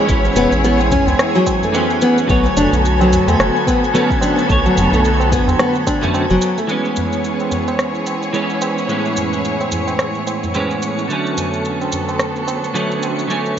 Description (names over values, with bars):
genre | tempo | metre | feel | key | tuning
organic downtempo | 109 BPM | 4/4 | swing 58% on 16ths | B dorian | A4 = 440 Hz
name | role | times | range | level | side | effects
clean electric guitar | accompaniment | 0.0-13.6 s | A2 to C#5 | -20 LUFS | right 1 dB | ensemble chorus, sidechain pumping, digital delay
clear studio string section | sustained chords | 0.0-13.6 s | F#3 to C#5 | -22 LUFS | equal | sidechain pumping
nylon-string guitar | arpeggios | 0.0-6.7 s | F#3 to D4 | -18 LUFS | left 1 dB | digital delay
twinkling granular texture | texture | 0.0-13.6 s | G#5 to C#6 | -25 LUFS | left 2 dB | built-in reverb
round analog bass | bass | 0.1-6.4 s | E1 to E2 | -18 LUFS | equal | sidechain pumping
electronic kick drum | drums | 0.1-6.0 s | none | -20 LUFS | equal | studio reverb
electronic shaker and rim click | drums | 0.1-13.6 s | none | -23 LUFS | right 1 dB | studio reverb
tabla | percussion | 0.2-13.6 s | none | -26 LUFS | right 3 dB | none
room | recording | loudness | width
light reverb, studio ambience | nothing above 7.7 kHz | -14 LUFS | side -9 dB against mid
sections
0.0-6.7 A section; 6.7-13.6 B section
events
kick drops out 6.1-6.7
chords
0.1 Amaj7; 2.3 Bm7; 6.7 C#m7; 8.9 Amaj7; 11.1 Bm7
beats
| 0.09 0.64 1.19 1.74 | 2.29 2.84 3.39 3.94 | 4.49 5.04 5.59 6.14 | 6.70 7.25 7.80 8.35 | 8.90 9.45 10.00 10.55 | 11.10 11.65 12.20 12.75 | 13.30